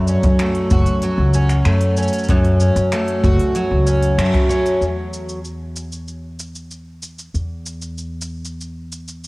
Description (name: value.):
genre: folktronica.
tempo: 95 BPM.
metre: 4/4.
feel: straight.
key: unclear.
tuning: A4 = 440 Hz.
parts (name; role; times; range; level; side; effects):
picked twelve-string acoustic guitar; arpeggios; 0.0-5.4 s; F#2 to F#4; -18 LUFS; equal; cassette tape.
upright bass; bass; 0.0-9.3 s; F#1 to F#2; -19 LUFS; equal; none.
organic electronic drum kit; drums; 0.1-9.3 s; finger snaps, hi-hat, shaker; -30 LUFS; equal; cassette tape.
kick drum; drums; 0.2-4.5 s; none; -19 LUFS; equal; cassette tape.
room: light reverb, small room ambience.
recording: home recording on cassette.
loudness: -14 LUFS.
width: side -23 dB against mid.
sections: 0.0-4.8 A section; 4.8-9.3 B section.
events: band accent 4.2-4.5.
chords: 0.0 F#m; 4.8 N.C..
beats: 0.40 1.03 1.66 | 2.29 2.92 3.55 4.18 | 4.82 5.45 6.08 6.71 | 7.34 7.97 8.61 9.24.